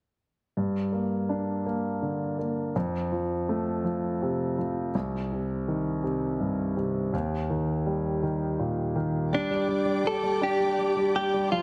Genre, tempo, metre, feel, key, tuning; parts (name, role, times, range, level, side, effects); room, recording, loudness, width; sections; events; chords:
pop; 55 BPM (dotted quarters); 6/8; straight; G minor; A4 = 440 Hz
warm concert grand piano; accompaniment; 0.6-11.6 s; C2 to D4; -29 LUFS; equal
direct-recorded clean electric guitar; melody; 9.3-11.6 s; D4 to A4; -28 LUFS; equal
warm studio string section; sustained chords; 9.3-11.6 s; F4 to D6; -36 LUFS; equal
moderate scoring stage reverb, RT60 2.0 s, small room ambience; -28 LUFS; mono
0.6-9.3 A section; 9.3-11.6 B section
0.6 Gm; 2.8 F; 4.9 Cm; 7.1 Eb; 9.3 G5